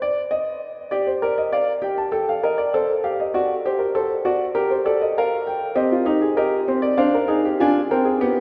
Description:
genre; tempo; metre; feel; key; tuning
classical, baroque-style 4-part fugue for grand piano; 99 BPM; 4/4; straight; C minor; A4 = 439 Hz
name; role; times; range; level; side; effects
warm grand piano; solo; 0.0-8.4 s; B3 to A5; -21 LUFS; equal; none
room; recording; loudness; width
wet cathedral reverb, RT60 4.6 s; recorded in a church or concert hall; -21 LUFS; mono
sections
0.0-8.4 A section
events
none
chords
0.0 N.C.; 0.9 Gm; 3.3 D7/F#; 4.6 Gm; 5.8 Cm

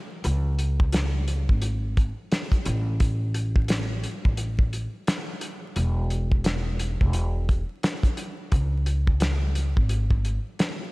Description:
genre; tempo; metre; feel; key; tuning
hip hop, boom-bap hip-hop; 87 BPM; 4/4; swing 60% on 16ths; C# minor; A4 = 440 Hz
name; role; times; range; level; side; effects
upright bass; bass; 0.2-10.4 s; E1 to C#2; -25 LUFS; equal; none
cloth-damped thuddy drum kit; drums; 0.2-10.8 s; hi-hat, kick drum, snare drum; -24 LUFS; equal; none
room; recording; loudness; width
light reverb; vinyl crackle; -22 LUFS; side -23 dB against mid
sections
0.0-10.9 A section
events
none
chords
none

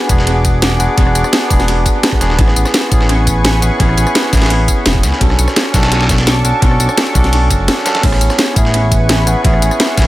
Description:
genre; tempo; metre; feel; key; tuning
liquid drum and bass; 170 BPM; 4/4; straight; A major; A4 = 439 Hz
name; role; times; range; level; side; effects
barky tine electric piano; accompaniment; 0.0-10.1 s; B3 to A4; -18 LUFS; equal; dub echo
lush unison pad; sustained chords; 0.0-10.1 s; G#4 to D6; -22 LUFS; equal; chorus, sidechain pumping
smooth gliding synth bass; bass; 0.1-10.1 s; D1 to C#2; -14 LUFS; equal; none
drum and bass drum kit; drums; 0.1-10.0 s; crash cymbal, hi-hat, rim click, snare drum, tambourine; -17 LUFS; equal; dub echo
dusty soul sampler-style drum kit; drums; 0.1-10.1 s; hi-hat, ride cymbal, snare drum; -22 LUFS; right 1 dB; high-pass filter on cymbals, high-pass filter on snare, high-pass filter on hats
electronic kick drum; drums; 0.1-10.0 s; none; -14 LUFS; equal; none
vibraphone with soft mallets; melody; 8.0-10.1 s; C#5 to F#5; -20 LUFS; right 2 dB; dub echo
room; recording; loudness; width
light reverb; echo-heavy mix; -10 LUFS; side -16 dB against mid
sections
0.0-10.1 A section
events
none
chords
0.0 E9; 2.4 Amaj9; 5.2 Bm9; 8.0 Amaj9

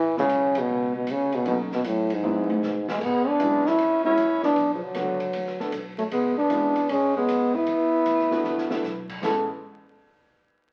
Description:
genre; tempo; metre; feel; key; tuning
jazz, small-group swing and bop; 155 BPM; 4/4; swing 66% on 8ths; A major; A4 = 440 Hz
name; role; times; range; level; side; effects
warm trombone; melody; 0.0-9.5 s; G#2 to A4; -25 LUFS; equal; none
upright bass; bass; 0.0-9.5 s; G#1 to B2; -45 LUFS; equal; none
warm concert grand piano; accompaniment; 0.2-9.5 s; F#3 to A4; -34 LUFS; equal; none
open jazz drum kit; drums; 0.2-9.3 s; crash cymbal, hi-hat, kick drum, ride cymbal, snare drum, toms; -38 LUFS; equal; none
warm tenor saxophone; second line; 2.9-9.5 s; C#3 to C#4; -34 LUFS; equal; none
room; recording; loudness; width
moderate large studio reverb, RT60 1.1 s; very old 78 rpm record, vinyl crackle; -24 LUFS; mono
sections
0.0-3.0 A section; 3.0-9.2 B section; 9.2-10.7 C section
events
band accent 0.5; drum fill 2.2-3.0, 8.4-8.8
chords
0.0 A; 1.5 D#m7b5; 2.2 G#7alt; 3.0 C#m7; 4.6 Bm9; 6.1 C#m7; 7.7 E9sus4; 9.2 Amaj7

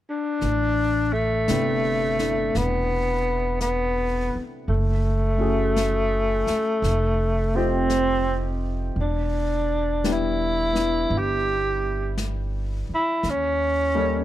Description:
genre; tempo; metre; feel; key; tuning
jazz ballad; 56 BPM; 4/4; swing 68% on 8ths; A minor; A4 = 440 Hz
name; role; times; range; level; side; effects
breathy tenor saxophone; melody; 0.1-14.2 s; A3 to G4; -23 LUFS; equal; none
upright bass; bass; 0.4-14.2 s; E1 to D#2; -26 LUFS; right 1 dB; none
jazz brush drum kit; drums; 0.4-14.2 s; brushed snare drum, hi-hat, snare drum; -34 LUFS; left 3 dB; none
clear concert grand piano; accompaniment; 1.5-14.2 s; C3 to A4; -29 LUFS; left 2 dB; none
room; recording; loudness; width
little or no reverb; dark, warm production; -21 LUFS; side -13 dB against mid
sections
0.4-14.2 A section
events
none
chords
0.4 Am11; 4.7 F#m9; 6.8 F9; 9.0 Em7; 13.2 D#7#11

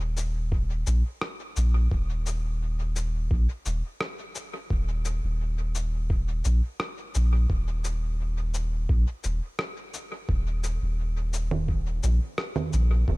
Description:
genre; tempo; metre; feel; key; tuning
ambient dub; 86 BPM; 4/4; straight; unclear; A4 = 440 Hz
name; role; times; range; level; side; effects
soft dub sub bass; bass; 0.0-13.2 s; Eb1 to Bb1; -25 LUFS; equal; none
electronic cabasa, rim click and congas; drums; 0.2-12.9 s; none; -34 LUFS; right 1 dB; small room ambience, dub echo
electronic kick drum; drums; 0.5-13.2 s; none; -26 LUFS; equal; small room ambience
room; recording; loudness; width
digital ambience; faint mains hum; -25 LUFS; side -23 dB against mid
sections
0.0-13.2 A section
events
none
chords
none

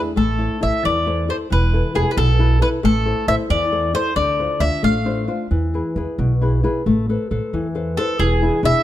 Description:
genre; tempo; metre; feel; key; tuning
italian folk, Italian serenade; 90 BPM (dotted quarters); 6/8; rubato; A harmonic minor; A4 = 439 Hz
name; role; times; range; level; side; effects
nylon-string guitar; accompaniment; 0.0-8.8 s; B2 to C5; -21 LUFS; left 3 dB; none
mandolin; melody; 0.2-5.5, 8.0-8.8 s; G#4 to F5; -20 LUFS; left 1 dB; none
upright bass; bass; 0.2-8.7 s; E1 to E2; -20 LUFS; right 1 dB; none
room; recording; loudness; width
little or no reverb; close, detailed microphones; -16 LUFS; side -13 dB against mid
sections
0.2-8.8 A section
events
none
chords
0.2 Am; 1.5 Esus4; 2.8 Am; 4.2 Dm7; 5.5 E; 6.9 Amadd9; 8.2 E7

